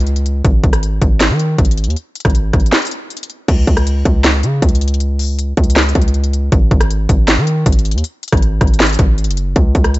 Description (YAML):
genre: hip hop, trap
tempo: 158 BPM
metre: 4/4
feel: half-time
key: unclear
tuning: A4 = 440 Hz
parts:
  - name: hard-hitting 808-style bass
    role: bass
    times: 0.0-10.0 s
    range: F#1 to D#3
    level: -14 LUFS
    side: equal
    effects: none
  - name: trap drum kit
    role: drums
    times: 0.0-10.0 s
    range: crash cymbal, handclaps, hi-hat, kick drum, rim click, snare drum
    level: -13 LUFS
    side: equal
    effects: none
room: little or no reverb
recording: nothing above 7.9 kHz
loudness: -12 LUFS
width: side -18 dB against mid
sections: 0.0-3.5 A section; 3.5-10.0 B section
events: break 2.7-3.5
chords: none